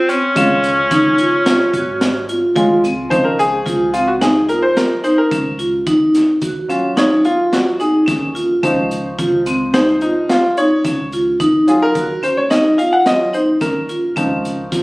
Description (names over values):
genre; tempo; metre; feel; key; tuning
progressive instrumental, band music in an uneven meter; 109 BPM; 5/4; straight; Db major; A4 = 440 Hz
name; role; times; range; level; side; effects
clear tenor saxophone; melody; 0.0-2.6 s; C4 to Db4; -16 LUFS; equal; plate reverb
clear grand piano; accompaniment; 0.0-14.8 s; Db3 to Gb5; -18 LUFS; equal; none
vibraphone with hard mallets; arpeggios; 0.0-14.8 s; C4 to Gb4; -16 LUFS; equal; none
crunchy breakbeat drum kit; drums; 0.1-14.8 s; hi-hat, kick drum, snare drum; -21 LUFS; equal; none
upright bass; bass; 0.4-14.8 s; Ab1 to Db3; -30 LUFS; equal; none
room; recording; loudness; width
moderate small room reverb, RT60 0.5 s; recorded on a phone in the room, club reverb; -13 LUFS; side -22 dB against mid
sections
0.0-3.1 A section; 3.1-14.8 B section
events
grand piano solo 3.1-14.8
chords
0.4 Db; 3.1 Dbmaj7; 5.9 Ebm7; 8.6 Dbmaj7; 11.4 Ebm7; 14.2 Dbmaj7